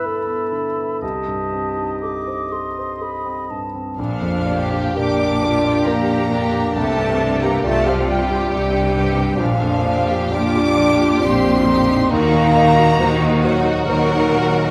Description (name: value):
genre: cinematic, emotional film score for orchestra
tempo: 60-70 BPM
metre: 3/4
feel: rubato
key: Bb major from 4.0 s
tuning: A4 = 440 Hz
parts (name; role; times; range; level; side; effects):
- mellow clarinet; second line; 0.0-3.5 s; G4 to A4; -28 LUFS; equal; none
- silver concert flute; second line; 0.0-4.0 s; A5 to D6; -31 LUFS; equal; none
- warm oboe; second line; 0.0-3.6 s; Eb5 to E5; -31 LUFS; equal; none
- clear grand piano; accompaniment; 0.0-14.7 s; Bb1 to Eb5; -26 LUFS; equal; none
- rich chamber violin section; second line; 4.0-14.7 s; F5 to D6; -27 LUFS; equal; none
- rich studio viola section; accompaniment; 4.0-14.7 s; D4 to Bb4; -28 LUFS; equal; none
- mellow French horn section; sustained chords; 4.0-14.7 s; F3 to D4; -21 LUFS; equal; none
- bright studio double bass section; bass; 4.0-14.6 s; Bb1 to Eb2; -26 LUFS; equal; none
- clear studio cello section; bass; 4.0-14.6 s; Bb2 to Eb3; -25 LUFS; equal; none
- rich studio violin section; melody; 4.5-14.7 s; Gb4 to G4; -29 LUFS; equal; none
room: wet concert hall reverb, RT60 1.9 s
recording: none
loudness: -18 LUFS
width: mono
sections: 0.0-4.0 A section; 4.0-14.7 A section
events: none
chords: 0.0 G6; 1.0 Cm6; 4.0 Bb6; 6.8 Csus2; 9.4 Bb6; 12.1 Ebm6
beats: 0.05 | 1.02 2.02 3.02 | 3.98 4.96 5.87 | 6.76 7.65 8.52 | 9.40 10.34 11.22 | 12.11 12.99 13.86